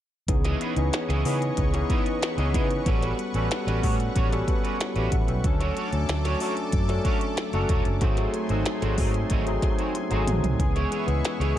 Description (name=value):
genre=polished 1980s jazz-funk pop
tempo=93 BPM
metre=4/4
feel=straight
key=C# minor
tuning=A4 = 440 Hz
part: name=barky tine electric piano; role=accompaniment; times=0.3-11.6 s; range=E3 to G5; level=-28 LUFS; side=left 2 dB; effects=analog chorus
part: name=lush unison pad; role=sustained chords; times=0.3-11.6 s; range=A3 to D6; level=-35 LUFS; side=equal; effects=chorus
part: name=electric guitar at the edge of break-up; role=riff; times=0.3-11.6 s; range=G3 to D#5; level=-34 LUFS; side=right 4 dB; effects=analog chorus
part: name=vintage muted fingered electric bass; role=bass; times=0.3-11.6 s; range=E1 to C#3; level=-26 LUFS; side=equal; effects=none
part: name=glitchy drum kit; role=drums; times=0.3-11.6 s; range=hi-hat, kick drum, snare drum, toms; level=-27 LUFS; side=equal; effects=none
room=little or no reverb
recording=dark, warm production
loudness=-22 LUFS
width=side -12 dB against mid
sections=0.3-11.6 A section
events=drum fill 9.9-10.6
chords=0.3 C#m9; 2.9 A13; 5.4 Dmaj7; 8.0 G#7b9; 10.6 C#m7